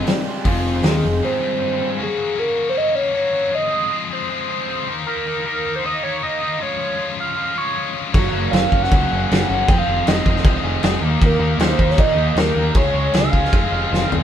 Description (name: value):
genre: indie rock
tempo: 156 BPM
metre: 4/4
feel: straight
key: F minor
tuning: A4 = 440 Hz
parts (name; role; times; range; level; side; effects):
- overdriven synth lead; melody; 0.0-14.1 s; F3 to G5; -22 LUFS; right 1 dB; distortion, phaser
- scooped high-gain guitar; riff; 0.0-14.2 s; F2 to Ab4; -24 LUFS; left 6 dB; distortion
- thick fuzz guitar; riff; 0.0-2.0, 8.2-14.2 s; F3 to Ab4; -24 LUFS; right 3 dB; distortion
- growling picked electric bass; bass; 0.0-1.2, 8.1-14.2 s; F1 to Bb2; -22 LUFS; equal; overdrive
- loose indie drum kit; drums; 0.1-0.9, 8.1-14.2 s; crash cymbal, hi-hat, kick drum, snare drum, toms; -18 LUFS; equal; none
room: moderate studio reverb, RT60 0.7 s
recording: band playing live in one room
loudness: -16 LUFS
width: side -10 dB against mid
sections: 0.0-2.0 A section; 2.0-14.2 B section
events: break 1.2-2.0; drum fill 13.9-14.2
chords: 0.0 Fm; 2.0 Gbadd9; 3.5 Fm7; 4.9 Eb; 6.6 Db; 8.1 Gbadd9; 9.7 Fm7; 11.0 Eb; 12.8 Db; 13.5 Fm